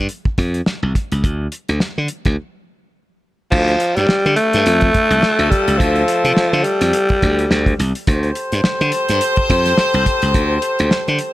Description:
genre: funk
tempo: 106 BPM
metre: 4/4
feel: swing 56% on 16ths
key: D minor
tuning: A4 = 440 Hz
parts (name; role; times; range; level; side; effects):
- glassy slap bass; bass; 0.0-11.2 s; C2 to D3; -17 LUFS; equal; none
- cloth-damped thuddy drum kit; drums; 0.1-11.3 s; crash cymbal, hi-hat, kick drum, snare drum; -19 LUFS; equal; none
- raspy alto saxophone; melody; 3.5-7.8 s; F3 to A3; -15 LUFS; equal; none
- clear horn section; second line; 4.7-11.3 s; A3 to C5; -19 LUFS; left 1 dB; none
room: small room reverb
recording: none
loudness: -14 LUFS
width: side -15 dB against mid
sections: 0.0-3.5 A section; 3.5-11.3 B section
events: break 2.4-3.5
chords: 0.0 Dm; 3.5 Dm7

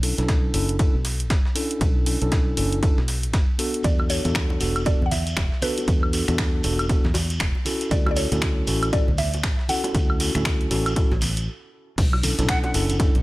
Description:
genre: deep house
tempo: 118 BPM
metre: 4/4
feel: swing 60% on 16ths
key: B minor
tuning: A4 = 442 Hz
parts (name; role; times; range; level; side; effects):
- mellow tine electric piano; stabs; 0.0-13.2 s; B3 to A4; -27 LUFS; equal; medium stereo tremolo, sidechain pumping
- fingered electric bass; bass; 0.0-13.2 s; E1 to E2; -26 LUFS; equal; sidechain pumping
- breakbeat sampler-style drum kit; drums; 0.0-13.1 s; ride cymbal, snare drum; -37 LUFS; right 1 dB; high-pass filter on cymbals, high-pass filter on snare
- punchy analog drum machine; drums; 0.0-13.2 s; crash cymbal, finger snaps, hi-hat, woodblock; -28 LUFS; equal; none
- electronic kick drum; drums; 0.3-13.1 s; none; -22 LUFS; equal; none
- mallet-like synth pluck; melody; 3.8-10.7 s; B4 to F#5; -30 LUFS; equal; chorus, phaser, analog delay
- shekere; percussion; 3.8-13.1 s; none; -34 LUFS; right 1 dB; none
- bongos and congas; percussion; 4.0-13.2 s; none; -34 LUFS; right 1 dB; none
- breathy silver concert flute; melody; 12.5-12.7 s; F#5; -30 LUFS; equal; tape echo
room: little or no reverb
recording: none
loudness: -20 LUFS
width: side -19 dB against mid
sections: 0.0-12.0 A section; 12.0-13.2 B section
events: stop 11.5-12.0; drop 12.0-13.2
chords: 0.0 Bm11; 3.8 E9sus4; 7.7 Dmaj9; 12.0 Bm11

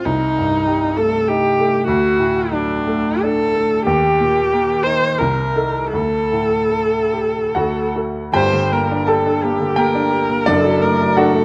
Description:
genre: classical, romantic duo for viola and grand piano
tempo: 68-101 BPM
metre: 3/4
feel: rubato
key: G minor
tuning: A4 = 445 Hz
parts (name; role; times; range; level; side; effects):
- warm viola; melody; 0.0-11.4 s; D4 to C5; -20 LUFS; equal; none
- clear baby grand piano; accompaniment; 0.0-11.4 s; F#1 to A5; -20 LUFS; equal; none
room: moderate recital hall reverb, RT60 1.3 s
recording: none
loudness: -17 LUFS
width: mono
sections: 0.0-8.3 A section; 8.3-11.4 B section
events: none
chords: 0.1 Am7b5/C; 1.9 D; 3.9 Eb; 5.2 Adim/C; 5.9 Dsus4; 7.5 D; 8.3 Gm; 10.5 D/F#

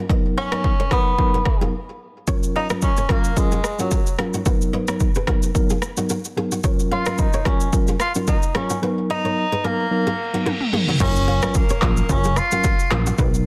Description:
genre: afrobeats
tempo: 110 BPM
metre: 4/4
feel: swing 55% on 16ths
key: F# major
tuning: A4 = 440 Hz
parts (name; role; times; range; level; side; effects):
- mellow tine electric piano; accompaniment; 0.0-13.5 s; F#3 to A#4; -28 LUFS; equal; none
- flamenco guitar; riff; 0.0-13.3 s; D#4 to F#5; -31 LUFS; equal; delay
- deep house drum kit; drums; 0.1-13.5 s; crash cymbal, handclaps, kick drum, rim click, shaker, toms; -23 LUFS; equal; overdrive
- warm tenor saxophone; melody; 0.4-12.9 s; F#3 to E#4; -26 LUFS; equal; delay
- reverse cymbal and impact; sound effects; 10.2-13.2 s; none; -32 LUFS; equal; none
- plucky analog bass; bass; 11.0-13.5 s; F#1 to B1; -24 LUFS; equal; none
room: light reverb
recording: dense, heavily limited modern master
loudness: -20 LUFS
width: mono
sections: 0.0-11.0 A section; 11.0-13.5 B section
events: break 0.0-2.3; reverse cymbal 10.2-11.0; drum fill 10.5-11.0; impact 11.0-13.2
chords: 0.0 F#maj7

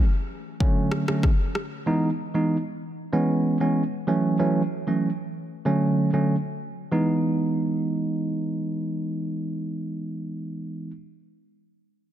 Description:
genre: afrobeats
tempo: 95 BPM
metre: 4/4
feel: straight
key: E major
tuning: A4 = 439 Hz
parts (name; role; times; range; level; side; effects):
- tine electric piano; accompaniment; 0.0-10.9 s; D3 to D#4; -23 LUFS; right 1 dB; none
- deep house drum kit; drums; 0.6-1.7 s; kick drum, rim click; -22 LUFS; left 1 dB; overdrive
room: light reverb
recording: dense, heavily limited modern master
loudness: -23 LUFS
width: side -11 dB against mid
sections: 0.0-6.9 A section; 6.9-9.4 B section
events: none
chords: 0.0 N.C.; 0.6 Dmaj7; 1.9 Emaj7; 3.1 C#m7; 4.1 F#m7; 5.7 Dmaj7; 6.9 Emaj7

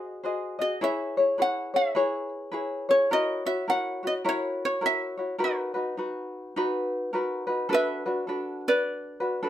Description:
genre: hawaiian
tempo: 105 BPM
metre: 4/4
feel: swing 62% on 8ths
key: B major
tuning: A4 = 436 Hz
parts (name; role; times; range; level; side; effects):
- ukulele; melody; 0.0-9.5 s; B4 to F#5; -26 LUFS; right 1 dB; none
- tenor ukulele; accompaniment; 0.0-9.5 s; D4 to D#5; -27 LUFS; left 2 dB; none
room: moderate studio reverb, RT60 0.6 s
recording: none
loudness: -25 LUFS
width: side -11 dB against mid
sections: 0.0-7.7 A section; 7.7-9.5 B section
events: none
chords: 0.0 G#7; 0.8 C#m7; 3.1 F#7; 5.4 Bmaj7; 7.7 Bm7

